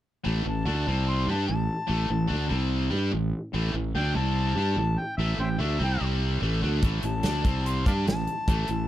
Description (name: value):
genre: blues rock power trio and southern rock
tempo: 146 BPM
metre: 4/4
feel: straight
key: A minor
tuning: A4 = 441 Hz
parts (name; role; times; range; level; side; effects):
- distorted electric guitar; riff; 0.2-8.9 s; A2 to G4; -30 LUFS; equal; overdrive
- fuzz fingered electric bass; bass; 0.3-8.9 s; A1 to G2; -26 LUFS; equal; overdrive
- warm harmonica; melody; 0.5-8.9 s; C5 to C6; -32 LUFS; left 2 dB; overdrive, slapback echo
- big rock drum kit; drums; 6.8-8.8 s; hi-hat, kick drum, snare drum; -27 LUFS; equal; none
room: little or no reverb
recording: dry, close 1970s-style studio recording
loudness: -24 LUFS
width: side -13 dB against mid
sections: 0.3-8.9 A section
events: none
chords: 0.3 A5; 0.9 C5; 1.3 A5; 2.5 C5; 2.9 A5; 4.2 C5; 4.6 Am; 6.0 C5; 6.4 A5; 7.4 C5; 7.9 A5